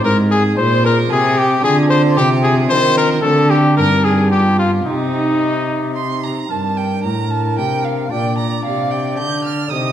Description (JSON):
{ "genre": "classical, baroque-style sonata movement with continuo", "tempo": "112 BPM", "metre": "3/4", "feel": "straight", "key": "C minor, G minor from 6.5 s", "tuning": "A4 = 440 Hz", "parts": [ { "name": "bright trumpet", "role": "melody", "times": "0.0-9.9 s", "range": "Eb4 to Eb5", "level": "-18 LUFS", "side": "left 3 dB", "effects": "none" }, { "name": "rich violin", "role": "second line", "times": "0.0-9.9 s", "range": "Eb4 to G6", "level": "-22 LUFS", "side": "right 6 dB", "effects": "none" }, { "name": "pipe organ, stopped flute", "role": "accompaniment", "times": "0.0-9.9 s", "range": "G2 to D5", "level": "-21 LUFS", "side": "left 1 dB", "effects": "none" }, { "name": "warm cello", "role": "bass", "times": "0.0-9.9 s", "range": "G2 to Eb3", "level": "-18 LUFS", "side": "right 1 dB", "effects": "none" } ], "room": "wet recital hall reverb, RT60 1.6 s", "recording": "dark, warm production", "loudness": "-13 LUFS", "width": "side -10 dB against mid", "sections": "0.0-6.5 A section; 6.5-9.9 A section", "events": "none", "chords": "0.0 Ab; 1.6 Cm11; 3.2 D7; 3.8 Cm/G; 4.3 G7; 4.9 Cm; 6.5 Gm; 8.1 Bb69" }